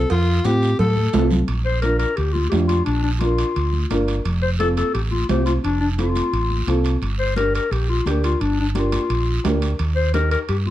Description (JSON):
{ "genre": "latin, cumbia", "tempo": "173 BPM", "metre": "4/4", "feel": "straight", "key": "unclear", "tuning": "A4 = 438 Hz", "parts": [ { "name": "breathy alto saxophone", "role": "melody", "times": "0.0-1.3 s", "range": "F4 to A4", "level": "-23 LUFS", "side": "left 3 dB", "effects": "none" }, { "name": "fingered electric bass", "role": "bass", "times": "0.0-10.7 s", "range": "F1 to A2", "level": "-20 LUFS", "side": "right 1 dB", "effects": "none" }, { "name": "congas", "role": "percussion", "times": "0.1-10.7 s", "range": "none", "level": "-28 LUFS", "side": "left 2 dB", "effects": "none" }, { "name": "cowbell and timbales", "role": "percussion", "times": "0.1-10.7 s", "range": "none", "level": "-29 LUFS", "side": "right 6 dB", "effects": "none" }, { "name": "guiro", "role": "percussion", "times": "0.1-10.7 s", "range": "none", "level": "-36 LUFS", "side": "right 5 dB", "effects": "none" }, { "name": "dark upright piano", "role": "accompaniment", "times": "0.4-10.4 s", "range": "C4 to C5", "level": "-24 LUFS", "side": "equal", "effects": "none" }, { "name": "breathy clarinet", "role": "second line", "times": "1.7-10.7 s", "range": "D4 to C5", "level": "-23 LUFS", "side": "left 4 dB", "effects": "none" } ], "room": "light reverb", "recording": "dark, warm production", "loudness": "-18 LUFS", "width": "side -14 dB against mid", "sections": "0.0-1.5 A section; 1.5-10.7 B section", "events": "drum fill 1.0-1.5; clarinet solo 1.5-10.7", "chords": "0.0 F; 1.5 Bb; 4.3 F; 7.0 Gm; 9.8 Eb", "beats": "| 0.11 0.45 0.80 1.14 | 1.49 1.83 2.18 2.52 | 2.87 3.21 3.56 3.91 | 4.25 4.60 4.95 5.29 | 5.64 5.98 6.33 6.68 | 7.02 7.37 7.71 8.06 | 8.41 8.75 9.10 9.45 | 9.79 10.14 10.48" }